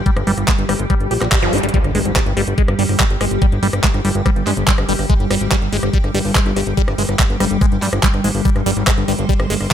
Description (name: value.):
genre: psychedelic trance.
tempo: 143 BPM.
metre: 4/4.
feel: straight.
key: unclear.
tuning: A4 = 439 Hz.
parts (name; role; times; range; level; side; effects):
evolving wavetable pad; sustained chords; 0.0-9.7 s; G3 to C5; -23 LUFS; left 1 dB; ensemble chorus, built-in reverb, phaser, sidechain pumping.
fat analog bass; bass; 0.0-9.7 s; G1 to G2; -20 LUFS; equal; none.
liquid acid bass; riff; 0.1-9.7 s; F3 to G4; -22 LUFS; moving between left 4 dB and right 4 dB; phaser, auto-pan, sidechain pumping, tape echo.
electronic kick drum; drums; 0.1-9.7 s; none; -16 LUFS; equal; none.
garage drum kit; drums; 0.1-9.7 s; handclaps, hi-hat, rim click; -21 LUFS; equal; none.
swell, zap and impact; sound effects; 1.1-3.4 s; none; -26 LUFS; equal; none.
room: little or no reverb.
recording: none.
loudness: -14 LUFS.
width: side -10 dB against mid.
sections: 0.0-1.7 A section; 1.7-9.7 B section.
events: swell 1.1-1.7; band accent 1.3; drum fill 1.5; drop 1.7-9.7; impact 1.7-3.4.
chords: 0.0 G5.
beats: | 0.06 0.48 0.90 1.32 | 1.74 2.16 2.58 3.00 | 3.42 3.84 4.26 4.68 | 5.09 5.51 5.93 6.35 | 6.77 7.19 7.61 8.03 | 8.45 8.87 9.29 9.71.